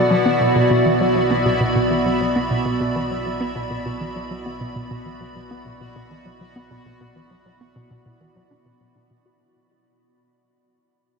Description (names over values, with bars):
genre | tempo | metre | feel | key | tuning
ambient, sequencer-driven space music | 100 BPM | 4/4 | straight | B minor | A4 = 440 Hz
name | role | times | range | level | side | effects
evolving wavetable pad | sustained chords | 0.0-9.4 s | B2 to B5 | -20 LUFS | equal | chorus, built-in reverb, shimmer reverb
hollow square pluck | riff | 0.0-9.3 s | B2 to F#4 | -24 LUFS | equal | chorus, ping-pong delay
round analog bass | bass | 0.0-9.4 s | B1 | -42 LUFS | right 1 dB | tube saturation
bubbling stepped-filter texture | texture | 0.0-9.4 s | E4 to E5 | -31 LUFS | right 3 dB | chorus, built-in reverb, shimmer reverb
room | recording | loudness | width
wet huge ambient reverb, RT60 7.7 s | dreamy mix soaked in reverb, cassette tape | -18 LUFS | side -4 dB against mid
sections
0.0-9.4 A section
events
fade-out on analog synth bass 0.0-9.4; fade-out 0.0-9.4; filter sweep on synth arpeggio sound 0.0-9.4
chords
0.0 Bm